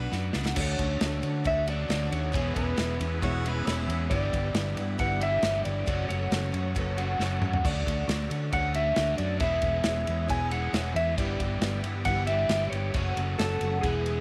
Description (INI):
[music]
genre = folk rock and heartland rock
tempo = 136 BPM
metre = 4/4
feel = straight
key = unclear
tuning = A4 = 440 Hz
[part]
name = clean lap steel guitar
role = melody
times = 0.0-14.2 s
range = G#4 to G#5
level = -33 LUFS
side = equal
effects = none
[part]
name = warm harmonica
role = second line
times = 0.0-0.1, 3.2-4.0 s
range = E4 to B4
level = -40 LUFS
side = equal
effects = none
[part]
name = picked twelve-string acoustic guitar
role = accompaniment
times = 0.0-14.2 s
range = E2 to B4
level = -39 LUFS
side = equal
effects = none
[part]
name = overdriven electric guitar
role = riff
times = 0.0-14.2 s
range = E2 to B4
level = -39 LUFS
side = equal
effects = none
[part]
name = fingered electric bass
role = bass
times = 0.0-14.2 s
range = E1 to D3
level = -33 LUFS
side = equal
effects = none
[part]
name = natural country drum kit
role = drums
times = 0.1-14.2 s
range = crash cymbal, kick drum, ride cymbal, snare drum, toms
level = -35 LUFS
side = equal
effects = none
[part]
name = warm upright piano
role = accompaniment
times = 0.6-14.2 s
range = D4 to C#6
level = -46 LUFS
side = equal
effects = none
[part]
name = tonewheel organ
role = sustained chords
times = 0.6-14.2 s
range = B3 to D5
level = -44 LUFS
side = equal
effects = none
[sound]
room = light reverb, small room ambience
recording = none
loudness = -28 LUFS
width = mono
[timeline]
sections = 0.6-14.2 A section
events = drum fill 0.1-0.6, 7.2-7.6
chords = 0.0 Bm; 0.6 Dmaj7; 2.3 E6; 4.1 G6; 5.9 F#m; 7.6 Dmaj7; 9.4 E6; 11.2 G6; 12.9 F#m